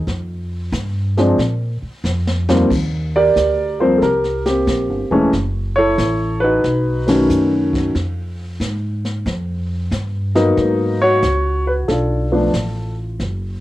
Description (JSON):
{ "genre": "jazz piano trio", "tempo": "92 BPM", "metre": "4/4", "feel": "swing 67% on 8ths", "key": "unclear", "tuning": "A4 = 442 Hz", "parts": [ { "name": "dark grand piano", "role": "melody", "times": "0.0-13.2 s", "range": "Eb2 to D5", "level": "-15 LUFS", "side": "equal", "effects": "cassette tape" }, { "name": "upright bass", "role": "bass", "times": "0.0-13.6 s", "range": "Eb1 to Bb2", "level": "-21 LUFS", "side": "equal", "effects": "none" }, { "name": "jazz brush drum kit", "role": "drums", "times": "0.1-13.6 s", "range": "brushed snare drum, crash cymbal, hi-hat, kick drum, ride cymbal, snare drum", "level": "-27 LUFS", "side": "equal", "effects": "cassette tape" } ], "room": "moderate small room reverb, RT60 0.5 s", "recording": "home recording on cassette", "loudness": "-15 LUFS", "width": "side -16 dB against mid", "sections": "0.0-2.7 A section; 2.7-13.6 B section", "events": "drum fill 2.0-2.7; band accent 7.0-7.3", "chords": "0.1 N.C.; 1.4 Bb5; 2.7 Eb6; 5.3 Gbm7; 6.6 B9; 8.0 Fmadd9; 10.6 Abm7; 11.9 Bm7b5", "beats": "| 0.08 0.74 1.39 2.05 | 2.70 3.36 4.01 4.67 | 5.33 5.98 6.64 7.29 | 7.95 8.61 9.26 9.92 | 10.57 11.23 11.89 12.54 | 13.20" }